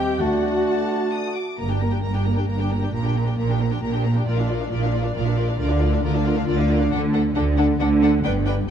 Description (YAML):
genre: classical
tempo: 135 BPM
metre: 3/4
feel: straight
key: G minor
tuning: A4 = 440 Hz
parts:
  - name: rich symphonic violin section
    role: melody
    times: 0.0-8.5 s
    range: D5 to Eb6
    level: -32 LUFS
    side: left 4 dB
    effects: none
  - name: mellow clarinet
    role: second line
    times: 0.0-1.3 s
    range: D5 to Eb5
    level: -36 LUFS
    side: left 5 dB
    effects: none
  - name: mellow oboe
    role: second line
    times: 0.0-1.4 s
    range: D5 to G5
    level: -34 LUFS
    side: left 3 dB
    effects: none
  - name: silver concert flute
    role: second line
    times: 0.0-1.3 s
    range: G5 to A5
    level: -33 LUFS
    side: left 3 dB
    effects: none
  - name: warm symphonic violin section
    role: second line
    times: 0.0-8.6 s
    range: G4 to G5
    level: -31 LUFS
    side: left 7 dB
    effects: none
  - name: mellow bassoon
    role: accompaniment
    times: 0.0-1.3 s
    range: A3 to C4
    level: -33 LUFS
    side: right 5 dB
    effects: none
  - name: warm symphonic viola section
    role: accompaniment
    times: 0.0-8.5 s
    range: Bb3 to G4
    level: -26 LUFS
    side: right 1 dB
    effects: none
  - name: dark French horn section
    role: sustained chords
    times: 0.0-1.4 s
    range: G3 to D4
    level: -29 LUFS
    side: left 4 dB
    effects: none
  - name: rich studio double bass section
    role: bass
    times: 0.0-8.6 s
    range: G1 to Eb2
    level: -23 LUFS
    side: right 2 dB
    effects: none
  - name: rich symphonic cello section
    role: bass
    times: 0.0-8.6 s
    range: D2 to D3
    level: -24 LUFS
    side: right 2 dB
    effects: none
room: moderate scoring stage reverb, RT60 1.6 s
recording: dark, warm production, nothing above 10.5 kHz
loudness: -19 LUFS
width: side -8 dB against mid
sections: 0.0-1.6 A section; 1.6-8.7 B section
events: none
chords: 0.2 D; 1.6 Gm; 2.9 Gm/Bb; 4.3 Bb; 5.6 Bb/D; 6.9 D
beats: | 0.20 0.67 1.13 | 1.58 2.04 2.49 | 2.94 3.38 3.83 | 4.27 4.72 5.16 | 5.60 6.04 6.47 | 6.91 7.35 7.80 | 8.24